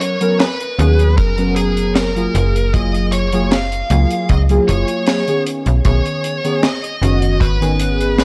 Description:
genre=vaporwave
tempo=77 BPM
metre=4/4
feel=straight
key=unclear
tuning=A4 = 435 Hz
part: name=biting lead guitar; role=melody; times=0.0-8.2 s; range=G#4 to E#5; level=-24 LUFS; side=equal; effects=overdrive, vintage 12-bit sampler grit, tape echo
part: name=warbly lo-fi synth keys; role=accompaniment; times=0.0-8.2 s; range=D#3 to A#4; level=-21 LUFS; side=equal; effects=analog chorus
part: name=deep reggae drum kit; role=drums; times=0.0-8.2 s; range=hi-hat, snare drum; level=-22 LUFS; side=equal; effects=none
part: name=slap-like FM bass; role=bass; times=0.8-8.2 s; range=F#1 to D#2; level=-18 LUFS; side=equal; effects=none
part: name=kick drum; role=drums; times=1.2-7.6 s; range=none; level=-18 LUFS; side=equal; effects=none
room=studio reverb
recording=dry, gritty hardware recording, cassette tape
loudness=-16 LUFS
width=mono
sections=0.0-8.2 A section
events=none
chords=0.0 F#maj9; 5.5 B69

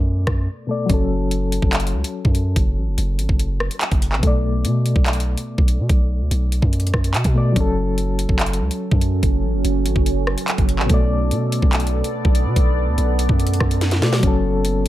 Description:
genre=hip hop, drill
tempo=144 BPM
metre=4/4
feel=half-time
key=F# minor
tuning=A4 = 440 Hz
part: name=soft electric-piano-like synth keys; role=accompaniment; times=0.0-14.9 s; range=B2 to D5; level=-25 LUFS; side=left 3 dB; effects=chorus, tremolo, low-pass filter
part: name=long sustained 808-style bass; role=bass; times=0.0-14.9 s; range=F#1 to B2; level=-20 LUFS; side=equal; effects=none
part: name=drill drum kit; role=drums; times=0.3-14.9 s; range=handclaps, hi-hat, kick drum, rim click, snare drum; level=-19 LUFS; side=equal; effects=none
part: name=deep dark ambient pad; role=sustained chords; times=8.5-14.9 s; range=F#3 to D5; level=-25 LUFS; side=right 3 dB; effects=chorus, built-in reverb
room=digital ambience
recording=none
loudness=-16 LUFS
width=side -14 dB against mid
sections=0.0-14.9 A section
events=break 0.0-0.9; filter sweep on synth keys 0.0-7.6; drum fill 13.8-14.2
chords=0.0 Bm7; 0.9 F#m; 4.2 Bm7; 7.6 F#m; 10.9 Bm7; 14.2 F#m

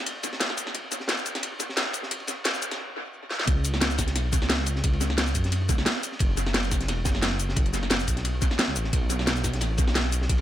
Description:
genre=liquid drum and bass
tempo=176 BPM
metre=4/4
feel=swing 54% on 16ths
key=unclear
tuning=A4 = 438 Hz
part: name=crunchy breakbeat drum kit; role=drums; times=0.1-10.4 s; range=ride cymbal, snare drum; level=-34 LUFS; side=equal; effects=high-pass filter on cymbals, high-pass filter on snare, high-pass filter on room, analog delay
part: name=drum and bass drum kit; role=drums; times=0.1-10.4 s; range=hi-hat, shaker, snare drum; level=-27 LUFS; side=equal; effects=high-pass filter on hats, high-pass filter on perc, high-pass filter on snare, high-pass filter on room, analog delay
part: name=electronic kick drum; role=drums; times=0.2-10.4 s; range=none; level=-26 LUFS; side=equal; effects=high-pass filter on kick, high-pass filter on room
part: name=dark detuned saw bass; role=bass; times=3.5-10.4 s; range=E1 to F#2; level=-27 LUFS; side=equal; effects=none
room=light reverb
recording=echo-heavy mix, high-pass filter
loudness=-23 LUFS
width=side -12 dB against mid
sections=0.0-3.5 A section; 3.5-10.4 B section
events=build-up 0.0-3.5; stop 2.8-3.5; drum fill 3.3; drop 3.5-10.4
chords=none

